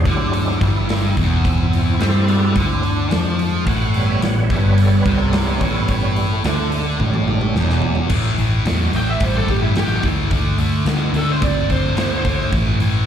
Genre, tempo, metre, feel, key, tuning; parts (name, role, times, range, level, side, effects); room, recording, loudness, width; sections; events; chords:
blues rock power trio and southern rock; 108 BPM; 4/4; straight; A4 = 440 Hz
overdriven tonewheel organ; sustained chords; 0.0-8.1 s; F#3 to F#5; -25 LUFS; right 5 dB; slow rotary speaker, chorus vibrato
vintage muted picked electric bass; bass; 0.0-13.0 s; E1 to G2; -20 LUFS; equal
thick fuzz guitar; riff; 0.1-13.1 s; E2 to C4; -20 LUFS; equal; distortion, slapback echo
big rock drum kit; drums; 0.1-12.9 s; crash cymbal, hi-hat, kick drum, snare drum, toms; -21 LUFS; equal
smooth overdriven lead guitar; melody; 9.0-12.5 s; E4 to G5; -24 LUFS; right 1 dB; wah, slapback echo
small room ambience; live gig heard through the venue's PA, club reverb; -15 LUFS; side -9 dB against mid
0.0-8.1 A section; 8.1-13.1 B section
tonewheel organ solo 0.0-8.1; drum fill 7.0-8.1
0.0 E7; 1.4 D7; 3.7 A7; 7.0 E7; 8.1 A5; 10.3 D5; 12.5 A5